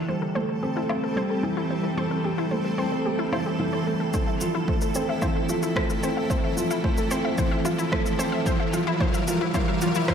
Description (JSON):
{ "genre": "piano and strings electronica", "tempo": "111 BPM", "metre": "4/4", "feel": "straight", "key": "unclear", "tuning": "A4 = 440 Hz", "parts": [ { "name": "granular cloud pad", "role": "sustained chords", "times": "0.0-10.1 s", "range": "G3 to F5", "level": "-30 LUFS", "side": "equal", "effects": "built-in reverb" }, { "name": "analog pluck", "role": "arpeggios", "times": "0.0-10.1 s", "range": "E4 to E5", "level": "-31 LUFS", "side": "left 4 dB", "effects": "chorus, sidechain pumping, tape echo" }, { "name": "felt-muted upright piano", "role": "riff", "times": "0.0-10.1 s", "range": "E3 to C4", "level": "-26 LUFS", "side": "right 1 dB", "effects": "tape echo" }, { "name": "riser", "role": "sound effects", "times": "0.3-10.1 s", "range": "none", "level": "-35 LUFS", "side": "equal", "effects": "none" }, { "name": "electronic woodblock, shaker and rim click", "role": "drums", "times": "0.9-10.1 s", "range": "none", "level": "-32 LUFS", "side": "left 1 dB", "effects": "overdrive, small room ambience" }, { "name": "electronic kick drum", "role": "drums", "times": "4.1-10.1 s", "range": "none", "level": "-27 LUFS", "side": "equal", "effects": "overdrive, small room ambience" } ], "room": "wet echo chamber reverb, RT60 1.8 s, digital ambience", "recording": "none", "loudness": "-22 LUFS", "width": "side -7 dB against mid", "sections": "0.0-10.1 A section", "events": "build-up 0.0-10.1; filter sweep on synth arpeggio sound 0.0-10.1; riser 0.3-10.1", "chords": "0.0 Am7; 4.1 Fmaj7; 8.5 Gm7" }